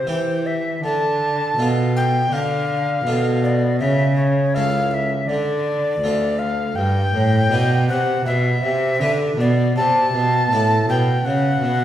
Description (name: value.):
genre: classical, baroque-style sonata movement with continuo.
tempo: 81 BPM.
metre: 4/4.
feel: straight.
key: unclear.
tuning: A4 = 440 Hz.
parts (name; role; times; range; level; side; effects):
mellow tenor recorder; melody; 0.0-11.8 s; C5 to A5; -21 LUFS; left 1 dB; none.
harpsichord; accompaniment; 0.0-11.8 s; C#2 to B4; -24 LUFS; right 1 dB; none.
rich cello; bass; 0.0-11.8 s; C#2 to E3; -20 LUFS; right 1 dB; none.
room: wet recital hall reverb, RT60 1.3 s.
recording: heard from further back in the room.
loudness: -16 LUFS.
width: side -11 dB against mid.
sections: 0.0-11.8 A section.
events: none.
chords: 0.0 C; 0.8 Dm; 3.8 A/C#; 5.3 Dm; 6.8 G; 8.3 Bmadd11; 9.8 Am; 11.2 N.C..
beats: 0.07 | 0.84 1.58 2.33 3.07 | 3.81 4.55 5.30 6.03 | 6.77 7.51 8.26 9.00 | 9.76 10.51 11.25.